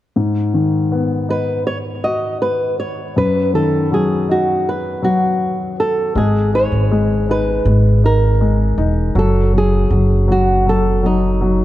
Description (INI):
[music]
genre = pop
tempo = 80 BPM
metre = 4/4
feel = straight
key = G# minor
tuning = A4 = 442 Hz
[part]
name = warm grand piano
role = accompaniment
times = 0.2-11.6 s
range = F#2 to F#4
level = -18 LUFS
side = left 3 dB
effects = none
[part]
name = flamenco guitar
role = melody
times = 1.3-11.6 s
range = D#4 to D#5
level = -18 LUFS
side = right 1 dB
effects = none
[part]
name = upright bass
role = bass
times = 6.2-11.6 s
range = E1 to G#1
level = -15 LUFS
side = right 1 dB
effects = none
[sound]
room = light reverb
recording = dark, warm production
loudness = -14 LUFS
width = side -14 dB against mid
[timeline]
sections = 0.2-6.2 A section; 6.2-11.6 B section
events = none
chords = 0.2 G#m7; 3.2 B/F#; 6.2 G#m; 9.2 F#m69